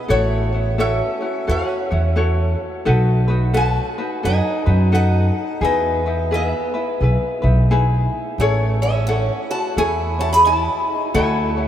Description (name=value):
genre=Hawaiian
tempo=87 BPM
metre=4/4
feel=swing 62% on 8ths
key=E major, A major from 8.4 s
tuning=A4 = 442 Hz
part: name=lap resonator guitar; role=melody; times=0.0-11.7 s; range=C#5 to B5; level=-22 LUFS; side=equal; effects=none
part: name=picked acoustic archtop guitar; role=second line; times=0.0-11.7 s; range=A3 to G#4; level=-26 LUFS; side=right 1 dB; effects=none
part: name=ukulele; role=accompaniment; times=0.0-11.7 s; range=D#4 to C#5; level=-22 LUFS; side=left 2 dB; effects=none
part: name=upright bass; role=bass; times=0.1-11.7 s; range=A1 to F#2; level=-18 LUFS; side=equal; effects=none
room=wet cathedral reverb, RT60 6.7 s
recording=in a vast, echoing space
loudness=-16 LUFS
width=side -10 dB against mid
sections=0.0-8.4 A section; 8.4-11.7 B section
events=none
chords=0.1 A6; 2.9 B7; 5.6 Emaj7; 8.4 Amaj7; 11.1 Dmaj9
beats=| 0.09 0.78 1.48 2.17 | 2.86 3.55 4.24 4.93 | 5.63 6.32 7.01 7.70 | 8.39 9.08 9.77 10.46 | 11.15